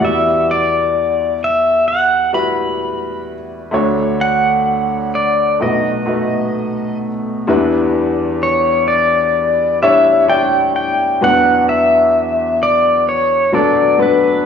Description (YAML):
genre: acoustic folk-pop ballad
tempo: 64 BPM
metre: 4/4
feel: straight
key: E dorian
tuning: A4 = 440 Hz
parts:
  - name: pedal steel guitar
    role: melody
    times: 0.0-14.5 s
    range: B4 to B5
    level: -13 LUFS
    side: equal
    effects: none
  - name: clear upright piano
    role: accompaniment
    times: 0.0-14.5 s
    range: B1 to D5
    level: -17 LUFS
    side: left 2 dB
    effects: none
room: moderate scoring stage reverb, RT60 1.7 s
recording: worn, warbling old tape, cassette tape, warbly pitch drift, studio ambience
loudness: -12 LUFS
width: side -7 dB against mid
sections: 0.0-7.5 A section; 7.5-14.5 B section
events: none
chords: 0.0 Em9; 3.7 Dmaj7; 5.6 B7; 7.5 Em7; 11.2 Bm/E